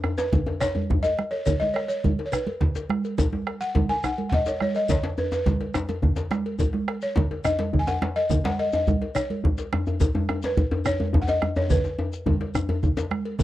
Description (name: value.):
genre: west african traditional, West African drum ensemble.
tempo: 141 BPM (dotted quarters).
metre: 12/8.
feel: straight.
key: B major pentatonic.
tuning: A4 = 440 Hz.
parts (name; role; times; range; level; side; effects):
bombo; percussion; 0.0-13.4 s; none; -26 LUFS; right 1 dB; none.
cowbell; percussion; 0.0-13.4 s; none; -37 LUFS; left 6 dB; none.
djembe; percussion; 0.0-13.1 s; none; -28 LUFS; left 2 dB; none.
balafon; melody; 0.2-13.1 s; B4 to G#5; -26 LUFS; equal; none.
shekere; percussion; 0.2-13.4 s; none; -34 LUFS; left 4 dB; none.
congas; percussion; 0.3-13.4 s; none; -29 LUFS; right 4 dB; none.
djembe; percussion; 0.3-13.4 s; none; -30 LUFS; left 2 dB; none.
room: little or no reverb.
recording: dry, close 1970s-style studio recording.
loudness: -22 LUFS.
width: side -14 dB against mid.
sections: 0.0-13.4 A section.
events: drum fill 11.7-13.4.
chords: none.